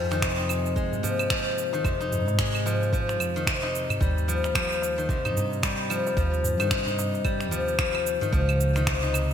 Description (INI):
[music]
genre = organic downtempo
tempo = 111 BPM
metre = 4/4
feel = swing 59% on 16ths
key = F minor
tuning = A4 = 440 Hz
[part]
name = steel-string zither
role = arpeggios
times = 0.0-9.3 s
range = C3 to Eb4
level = -27 LUFS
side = left 2 dB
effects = digital delay
[part]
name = upright bass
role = bass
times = 0.0-9.3 s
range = Db2 to Bb2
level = -28 LUFS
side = equal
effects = tube saturation, sidechain pumping
[part]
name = electronic finger snaps, cabasa and claves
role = drums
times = 0.1-9.3 s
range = none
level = -30 LUFS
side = right 2 dB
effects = gated reverb
[part]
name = darbuka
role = percussion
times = 0.1-9.3 s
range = none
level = -36 LUFS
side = equal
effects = none
[part]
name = electronic kick drum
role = drums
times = 0.2-9.0 s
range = none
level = -29 LUFS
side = right 1 dB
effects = overdrive
[sound]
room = moderate lush hall reverb, RT60 2.0 s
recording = bright 1980s-style digital production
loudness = -23 LUFS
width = side -9 dB against mid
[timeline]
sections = 0.0-9.3 A section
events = none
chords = 0.0 Fm; 4.0 Eb; 8.3 Db